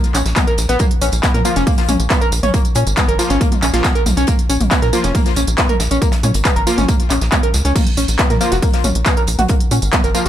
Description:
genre	driving peak-time techno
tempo	138 BPM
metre	4/4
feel	straight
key	Bb phrygian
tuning	A4 = 440 Hz
part	techno drum kit	drums	0.0-10.3 s	crash cymbal, handclaps, hi-hat, tambourine, toms	-20 LUFS	equal	overdrive, small room ambience
part	overdriven synth lead	riff	0.1-10.3 s	Bb3 to Bb4	-20 LUFS	equal	distortion, wide subtle chorus, sidechain pumping, ping-pong delay
part	tight sequencer bass	bass	0.1-10.3 s	F1 to Bb2	-18 LUFS	equal	sidechain pumping
part	modern studio drum kit	drums	0.1-10.3 s	hi-hat, snare drum	-31 LUFS	left 2 dB	none
part	electronic kick drum	drums	0.4-10.0 s	none	-17 LUFS	equal	overdrive, small room ambience
part	supersaw stab	stabs	1.4-10.3 s	F3 to F4	-22 LUFS	left 1 dB	sidechain pumping, ping-pong delay
room	little or no reverb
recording	none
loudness	-13 LUFS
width	side -11 dB against mid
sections	0.0-10.3 A section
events	none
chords	0.0 Bb5

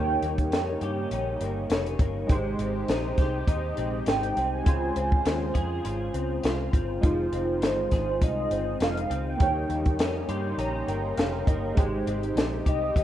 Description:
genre	indie pop, bedroom pop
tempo	101 BPM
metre	4/4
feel	swing 55% on 16ths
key	unclear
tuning	A4 = 437 Hz
part	warm velvety synth lead	melody	0.0-13.0 s	C5 to Ab5	-30 LUFS	right 2 dB	analog chorus, analog delay
part	electric guitar through a small old amp	accompaniment	0.0-13.0 s	Db3 to Ab4	-33 LUFS	left 4 dB	ensemble chorus, vibrato effect
part	warm analog keys	accompaniment	0.0-13.0 s	Ab3 to C6	-32 LUFS	right 3 dB	chorus, cassette tape
part	warm analog pad	sustained chords	0.0-13.0 s	C3 to C5	-40 LUFS	equal	none
part	vintage muted picked electric bass	bass	0.0-13.0 s	F1 to G2	-32 LUFS	equal	none
part	compact cocktail drum kit	drums	0.2-13.0 s	hi-hat, kick drum, snare drum	-25 LUFS	equal	none
room	light reverb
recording	rough home demo mix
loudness	-24 LUFS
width	side -12 dB against mid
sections	0.0-13.0 A section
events	synth keys fill 10.0-11.8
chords	0.0 Eb7; 2.3 Abmaj7; 4.7 Dbmaj7; 7.0 Fm7; 9.4 Eb7; 11.8 Abmaj7

